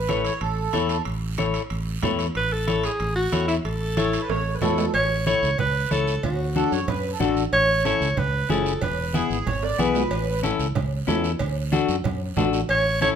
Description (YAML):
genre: latin, cumbia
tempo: 186 BPM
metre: 4/4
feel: straight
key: A major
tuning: A4 = 440 Hz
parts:
  - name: accordion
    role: second line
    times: 0.0-1.0, 4.0-10.4 s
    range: G#4 to D5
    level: -28 LUFS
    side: right 4 dB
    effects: light tremolo tuning
  - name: fingered electric bass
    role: bass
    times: 0.0-13.1 s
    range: E1 to F#2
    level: -27 LUFS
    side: right 1 dB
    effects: none
  - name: clean electric guitar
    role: accompaniment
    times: 0.1-13.2 s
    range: B3 to E5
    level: -26 LUFS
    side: left 7 dB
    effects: none
  - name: congas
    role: percussion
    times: 0.1-13.2 s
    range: none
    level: -30 LUFS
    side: right 3 dB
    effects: none
  - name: guiro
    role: percussion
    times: 0.1-13.2 s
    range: none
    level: -38 LUFS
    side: right 7 dB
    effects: none
  - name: timbales and cowbell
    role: percussion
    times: 0.1-12.9 s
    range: none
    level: -32 LUFS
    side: right 4 dB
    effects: none
  - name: bright alto saxophone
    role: melody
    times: 2.4-9.3, 12.7-13.1 s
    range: E4 to C#5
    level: -23 LUFS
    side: right 1 dB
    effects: none
room: moderate large studio reverb, RT60 1.1 s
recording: minimal, uncompressed stereo recording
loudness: -21 LUFS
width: side -8 dB against mid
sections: 0.0-4.9 A section; 4.9-13.2 B section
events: drum fill 4.3-4.9, 9.6-10.1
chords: 0.0 A; 6.2 D; 7.5 A; 8.8 E; 10.1 A; 11.4 D